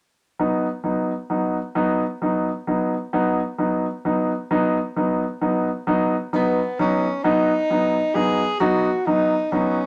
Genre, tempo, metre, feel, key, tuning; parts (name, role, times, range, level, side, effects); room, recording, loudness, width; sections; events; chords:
six-eight pop ballad; 44 BPM (dotted quarters); 6/8; straight; B major; A4 = 440 Hz
clear baby grand piano; accompaniment; 0.4-9.8 s; F#3 to D#4; -23 LUFS; equal
clear tenor saxophone; melody; 6.3-9.9 s; B3 to G#4; -24 LUFS; equal
wet studio reverb, RT60 0.5 s; -22 LUFS; mono
0.4-5.9 A section; 5.9-9.9 B section
0.4 B